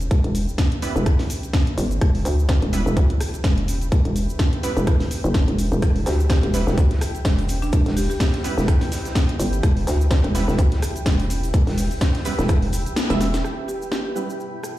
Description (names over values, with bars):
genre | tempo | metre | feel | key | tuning
bass house | 126 BPM | 4/4 | swing 56% on 16ths | E minor | A4 = 440 Hz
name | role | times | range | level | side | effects
hollow knocking FM bass | bass | 0.0-13.4 s | E1 to D2 | -21 LUFS | equal | tube saturation, sidechain pumping
garage drum kit | drums | 0.0-14.7 s | cabasa, hi-hat, rim click, snare drum | -28 LUFS | equal | none
granular cloud pad | texture | 0.0-14.8 s | E4 to G5 | -34 LUFS | equal | built-in reverb, sidechain pumping
electronic kick drum | drums | 0.1-12.6 s | none | -18 LUFS | equal | none
orchestra-hit-like synth stab | stabs | 0.8-14.2 s | G3 to E5 | -28 LUFS | right 2 dB | built-in reverb, sidechain pumping, ping-pong delay
raw garage drum kit | drums | 5.8-13.4 s | hi-hat, shaker, snare drum | -37 LUFS | equal | sidechain pumping on hats, high-pass filter on hats, high-pass filter on snare, sidechain pumping on perc, high-pass filter on perc, high-pass filter on room
buzzing marimba with medium mallets | melody | 6.1-8.3, 13.7-14.1 s | D4 to G4 | -30 LUFS | right 1 dB | ping-pong delay
dark analog pad | sustained chords | 13.7-14.8 s | G3 to B4 | -48 LUFS | equal | chorus, sidechain pumping
room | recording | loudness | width
studio reverb | played on a big sound system in a bare room, large studio reverb | -18 LUFS | side -15 dB against mid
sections
0.0-13.4 A section; 13.4-14.8 B section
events
fade-in on ambient pad 0.0-13.4; kick drops out 13.0-13.4; band accent 13.0; drum fill 13.2; filter sweep on synth stab 13.4-14.8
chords
0.0 Em